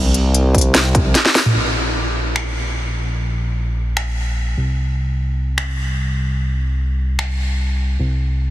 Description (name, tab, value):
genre	future bass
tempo	149 BPM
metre	4/4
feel	half-time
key	unclear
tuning	A4 = 440 Hz
part	fat analog bass	bass	0.0-8.5 s	Bb1 to C2	-18 LUFS	equal	sidechain pumping
part	trap drum kit	drums	0.1-7.3 s	finger snaps, hi-hat, snare drum, toms	-20 LUFS	equal	none
part	electronic kick drum	drums	0.5-1.0 s	none	-16 LUFS	equal	none
room	light reverb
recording	heavily compressed radio sound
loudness	-16 LUFS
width	side -14 dB against mid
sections	0.0-1.6 A section; 1.6-8.5 B section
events	drop 0.0-1.6; drum fill 1.1-1.6; band accent 1.4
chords	none